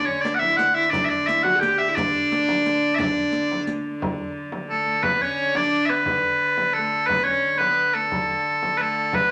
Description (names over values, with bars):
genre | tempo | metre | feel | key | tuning
medieval dance | 117 BPM (dotted quarters) | 6/8 | straight | D major | A4 = 440 Hz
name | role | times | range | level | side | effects
loud bright bagpipes | melody | 0.0-9.3 s | A4 to G5 | -23 LUFS | equal | none
clear viola da gamba | second line | 0.0-9.3 s | A3 to A4 | -30 LUFS | equal | none
clear hurdy-gurdy | drone | 0.0-9.3 s | D3 | -34 LUFS | equal | none
frame drum | percussion | 0.1-9.3 s | none | -34 LUFS | equal | none
riq | percussion | 0.2-3.8 s | none | -37 LUFS | equal | none
room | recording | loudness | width
wet club reverb, RT60 0.7 s | none | -22 LUFS | mono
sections
0.0-4.0 A section; 4.0-9.3 B section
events
none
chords
none